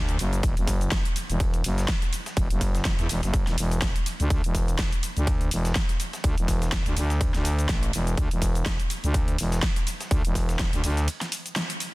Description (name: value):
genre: bass house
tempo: 124 BPM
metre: 4/4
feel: swing 56% on 16ths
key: unclear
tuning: A4 = 440 Hz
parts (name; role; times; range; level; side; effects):
- growling FM bass; bass; 0.0-11.1 s; E1 to E2; -25 LUFS; equal; overdrive, sidechain pumping
- big-room dance drum kit; drums; 0.1-11.9 s; hi-hat, shaker, snare drum; -31 LUFS; equal; overdrive
- breakbeat sampler-style drum kit; drums; 0.1-11.9 s; ride cymbal, snare drum; -41 LUFS; right 2 dB; none
- electronic kick drum; drums; 0.4-10.7 s; none; -25 LUFS; equal; overdrive
room: digital ambience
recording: dense, heavily limited modern master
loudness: -23 LUFS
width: side -21 dB against mid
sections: 0.0-11.9 A section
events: break 11.1-11.9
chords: none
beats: | 0.43 0.92 1.40 1.89 | 2.37 2.85 3.34 3.82 | 4.30 4.79 5.27 5.76 | 6.24 6.72 7.21 7.69 | 8.18 8.66 9.14 9.63 | 10.11 10.60 11.08 11.56